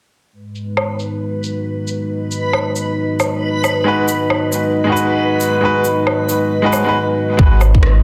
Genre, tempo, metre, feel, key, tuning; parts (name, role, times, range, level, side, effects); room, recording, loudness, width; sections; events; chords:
future garage; 136 BPM; 4/4; swing 62% on 16ths; G# minor; A4 = 440 Hz
dark analog pad; sustained chords; 0.3-8.0 s; G#3 to D#5; -21 LUFS; equal; chorus, sidechain pumping
backwards swelling texture; texture; 1.1-8.0 s; B4; -28 LUFS; equal; built-in reverb
electronic shaker, woodblock and rim click; drums; 0.6-7.9 s; -23 LUFS; equal; low-pass filter on perc, low-pass filter on snare, low-pass filter on room
clear upright piano; accompaniment; 3.8-7.6 s; G#3 to B4; -20 LUFS; equal; sidechain pumping, digital delay
warm sub bass; bass; 7.4-8.0 s; G#1; -14 LUFS; equal; tube saturation, sidechain pumping
electronic kick drum; drums; 7.4-7.8 s; -13 LUFS; equal
moderate concert hall reverb, RT60 1.8 s; dense, heavily limited modern master; -16 LUFS; mono
0.3-7.4 A section
0.3 G#m7